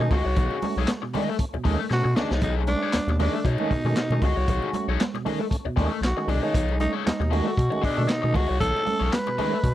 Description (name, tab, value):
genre	funk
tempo	116 BPM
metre	4/4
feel	swing 56% on 16ths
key	B mixolydian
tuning	A4 = 440 Hz
part	growling tenor saxophone	melody	0.0-9.7 s	D4 to B4	-27 LUFS	equal	none
part	raw garage guitar	accompaniment	0.0-9.6 s	A3 to D#5	-30 LUFS	left 10 dB	wah, overdrive
part	percussive tonewheel organ	stabs	0.0-9.7 s	B2 to C#4	-30 LUFS	right 3 dB	overdrive, chorus vibrato, slow rotary speaker, slapback echo
part	round analog bass	bass	0.0-9.7 s	B1 to B2	-24 LUFS	equal	tube saturation
part	crunchy breakbeat drum kit	drums	0.1-9.7 s	handclaps, hi-hat, kick drum, snare drum	-28 LUFS	equal	none
part	congas	percussion	0.1-9.7 s	none	-34 LUFS	right 6 dB	none
room	little or no reverb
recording	dry, close 1970s-style studio recording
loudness	-22 LUFS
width	side -13 dB against mid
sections	0.0-9.7 A section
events	drum fill 1.9-2.4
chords	0.0 B13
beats	| 0.37 0.88 1.39 1.91 | 2.42 2.94 3.45 3.97 | 4.48 5.00 5.51 6.03 | 6.54 7.06 7.58 8.09 | 8.61 9.12 9.64